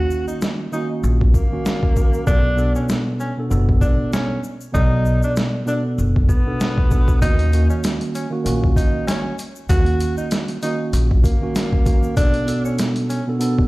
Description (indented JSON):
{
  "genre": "hip hop, boom-bap hip-hop",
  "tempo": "97 BPM",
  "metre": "4/4",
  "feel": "swing 56% on 16ths",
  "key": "Eb minor",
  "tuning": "A4 = 440 Hz",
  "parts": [
    { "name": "breathy tenor saxophone", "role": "melody", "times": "0.0-13.2 s", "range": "Bb3 to Gb4", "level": "-26 LUFS", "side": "equal", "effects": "high-pass filter, low-pass filter, tape echo" },
    { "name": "mellow tine electric piano", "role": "accompaniment", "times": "0.0-13.7 s", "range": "B2 to D5", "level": "-22 LUFS", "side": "right 1 dB", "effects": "cassette tape, high-pass filter, low-pass filter" },
    { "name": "upright bass", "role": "bass", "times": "0.0-11.2 s", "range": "F#1 to Eb2", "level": "-19 LUFS", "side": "equal", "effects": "none" },
    { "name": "egg shaker", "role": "percussion", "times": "0.1-13.6 s", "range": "none", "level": "-42 LUFS", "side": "left 6 dB", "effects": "none" },
    { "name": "boom bap sampler-style drum kit", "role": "drums", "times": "0.4-13.7 s", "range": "hi-hat, kick drum, snare drum", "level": "-18 LUFS", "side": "equal", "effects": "overdrive" }
  ],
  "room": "light reverb",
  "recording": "played on a big sound system in a bare room, stone room reverb",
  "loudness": "-16 LUFS",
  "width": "side -20 dB against mid",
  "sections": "0.0-13.7 A section",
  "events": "break 0.0-7.2",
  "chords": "0.0 Ebm7; 2.3 Bm7; 7.2 Ebm7; 12.2 Bm7",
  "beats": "0.42 1.03 1.65 | 2.27 2.89 3.51 4.13 | 4.75 5.37 5.98 6.60 | 7.22 7.84 8.46 9.08 | 9.70 10.31 10.93 11.55 | 12.17 12.79 13.41"
}